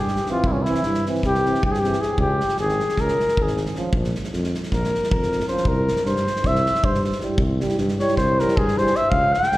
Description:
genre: balkan folk, Balkan brass band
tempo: 311 BPM (eighths)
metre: 9/8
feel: straight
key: C phrygian dominant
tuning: A4 = 441 Hz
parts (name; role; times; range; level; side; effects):
- warm flugelhorn; second line; 0.0-9.6 s; Db4 to G5; -21 LUFS; left 1 dB; slapback echo
- warm tuba; bass; 0.0-9.6 s; Ab1 to G2; -24 LUFS; equal; none
- loose indie drum kit; percussion; 0.1-9.6 s; kick drum, snare drum; -26 LUFS; equal; none
- mellow euphonium; accompaniment; 0.3-8.9 s; C4 to E4; -30 LUFS; left 2 dB; slapback echo
- warm euphonium; accompaniment; 0.3-8.9 s; E3 to G3; -28 LUFS; right 3 dB; slapback echo
room: light reverb, small room ambience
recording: live gig heard through the venue's PA, recital hall reverb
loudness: -18 LUFS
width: side -17 dB against mid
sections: 0.0-9.6 A section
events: flugelhorn solo 0.0-9.6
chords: 0.0 C; 2.2 Db5; 3.9 Bb5; 5.7 C

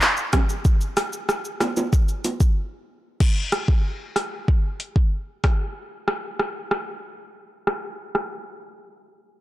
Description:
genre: dancehall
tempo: 94 BPM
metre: 4/4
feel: straight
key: none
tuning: none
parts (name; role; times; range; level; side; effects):
- afro-pop drum kit; drums; 0.0-8.3 s; crash cymbal, handclaps, hi-hat, kick drum, rim click, shaker; -21 LUFS; equal; none
- bongos; percussion; 0.3-2.4 s; none; -26 LUFS; right 2 dB; none
room: light reverb, digital ambience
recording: blown-out, overdriven recording, overdrive, low-pass filter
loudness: -21 LUFS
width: side -16 dB against mid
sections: 0.0-3.2 A section; 3.2-8.3 B section; 8.3-9.4 C section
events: break 2.6-3.2, 5.8-8.3; filter sweep 3.2-8.3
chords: none

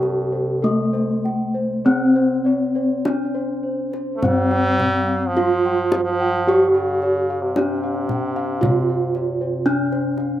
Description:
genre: Javanese gamelan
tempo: 49-60 BPM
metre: 4/4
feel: straight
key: C pelog barang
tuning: A4 = 439 Hz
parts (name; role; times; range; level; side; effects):
- gamelan-type bronze metallophone; melody; 0.0-10.4 s; A3+20c to G4-40c; -20 LUFS; equal; slapback echo
- brilliant trombone; second line; 0.0-10.1 s; G2-39c to A3+22c; -24 LUFS; right 1 dB; none
- gamelan-type bossed gongs; arpeggios; 0.0-10.2 s; A4+20c to G5-40c; -30 LUFS; left 4 dB; slapback echo
- gamelan-type bronze metallophone; arpeggios; 0.0-10.4 s; A4+20c to G5-40c; -30 LUFS; right 2 dB; none
- gamelan-type bossed gongs; bass; 0.0-10.4 s; G2-40c to G4-40c; -24 LUFS; equal; none
- kendang; percussion; 0.0-10.3 s; none; -25 LUFS; left 2 dB; none
room: little or no reverb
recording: recorded outdoors, with no room sound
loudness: -17 LUFS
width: side -12 dB against mid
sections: 0.0-10.4 A section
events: none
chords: none

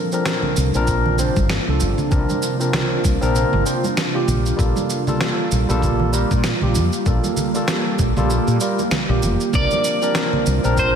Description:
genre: sunset chillout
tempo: 97 BPM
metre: 4/4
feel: swing 57% on 16ths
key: G minor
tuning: A4 = 440 Hz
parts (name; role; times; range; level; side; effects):
- barky tine electric piano; accompaniment; 0.0-11.0 s; F3 to C5; -22 LUFS; equal; auto-pan, ping-pong delay, slapback echo
- ethereal airy pad; sustained chords; 0.0-11.0 s; C3 to G4; -24 LUFS; right 1 dB; ensemble chorus, built-in reverb, vintage 12-bit sampler grit
- electronic cabasa, snare drum and congas; drums; 0.1-10.9 s; none; -24 LUFS; right 2 dB; slapback echo
- woody fretless electric bass; bass; 0.6-11.0 s; F1 to Bb2; -20 LUFS; equal; tube saturation
- congas; percussion; 0.6-10.6 s; none; -30 LUFS; right 4 dB; none
- electronic kick drum; drums; 0.9-10.9 s; none; -21 LUFS; equal; none
- electric guitar at the edge of break-up; melody; 9.6-11.0 s; C5 to D5; -20 LUFS; right 1 dB; analog chorus, ping-pong delay, slapback echo
room: wet concert hall reverb, RT60 2.1 s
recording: big arena sound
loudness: -16 LUFS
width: side -7 dB against mid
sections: 0.0-11.0 A section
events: none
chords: 0.0 C9sus4; 4.3 Gm9/Bb; 9.5 C9sus4

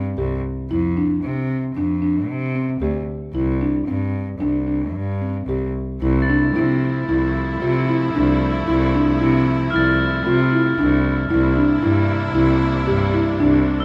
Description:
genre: contemporary instrumental, chamber music in an uneven meter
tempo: 114 BPM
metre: 5/4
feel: straight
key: unclear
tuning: A4 = 440 Hz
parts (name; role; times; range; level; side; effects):
- buzzing marimba with soft mallets; arpeggios; 0.0-13.8 s; C4 to G4; -23 LUFS; equal; none
- rich cello; bass; 0.0-13.8 s; C2 to C3; -23 LUFS; equal; none
- clear studio string section; sustained chords; 6.0-13.8 s; C3 to E4; -28 LUFS; equal; none
- crotales; texture; 6.2-13.8 s; E6 to A6; -29 LUFS; equal; none
room: light reverb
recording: dark, warm production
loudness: -19 LUFS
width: mono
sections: 0.0-6.0 A section; 6.0-13.8 B section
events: none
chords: 0.0 C5; 0.7 Fsus2; 3.3 Csus2; 6.0 Fmaj7/C; 11.3 C9

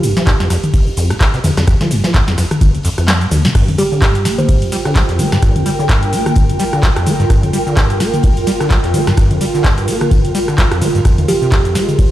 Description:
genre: acid house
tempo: 128 BPM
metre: 4/4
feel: swing 57% on 16ths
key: G minor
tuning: A4 = 440 Hz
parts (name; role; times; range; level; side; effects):
- deep acid bass; riff; 0.0-12.1 s; F1 to Bb3; -17 LUFS; equal; overdrive, analog chorus, cassette tape, sidechain pumping, dub echo
- booming analog drum machine; drums; 0.0-12.1 s; crash cymbal, handclaps, hi-hat, ride cymbal, rim click, shaker, snare drum, toms; -18 LUFS; left 1 dB; none
- warm soul drum kit; drums; 0.0-12.1 s; hi-hat, snare drum, tambourine; -32 LUFS; left 2 dB; high-pass filter on hats, high-pass filter on snare, high-pass filter on perc, high-pass filter on room
- electronic kick drum; drums; 0.3-12.1 s; none; -14 LUFS; equal; none
- ethereal airy pad; texture; 4.3-12.1 s; F4 to G5; -20 LUFS; right 2 dB; ensemble chorus, built-in reverb, sidechain pumping
- buzzing kalimba; melody; 3.8-5.0, 11.3-11.4 s; G4 to C5; -22 LUFS; right 4 dB; tape echo
room: light reverb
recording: played on a big sound system in a bare room, stone room reverb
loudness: -11 LUFS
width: side -13 dB against mid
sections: 0.0-3.5 A section; 3.5-12.1 A section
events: drop 0.0-3.5, 3.5-12.1; kick drops out 3.1-3.5; drum fill 3.1-3.5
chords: 0.0 F5; 3.5 Gm7; 11.0 Fm7

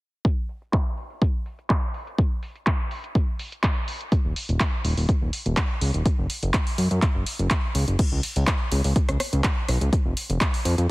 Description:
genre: progressive house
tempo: 124 BPM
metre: 4/4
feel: straight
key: unclear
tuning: A4 = 440 Hz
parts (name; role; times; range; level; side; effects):
- deep house drum kit; drums; 0.2-10.9 s; crash cymbal, handclaps, hi-hat, rim click; -29 LUFS; equal; overdrive, sidechain pumping on hats, low-pass filter on hats, low-pass filter on snare, sidechain pumping on cymbals, low-pass filter on cymbals
- electronic kick drum; drums; 0.2-10.5 s; none; -22 LUFS; equal; overdrive
- fat analog bass; bass; 4.2-10.9 s; Eb1 to Gb2; -22 LUFS; equal; sidechain pumping
room: little or no reverb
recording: heavily compressed radio sound, multiband compression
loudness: -22 LUFS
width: side -21 dB against mid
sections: 0.2-8.0 A section; 8.0-10.9 B section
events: filter sweep on drum 0.2-8.0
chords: none

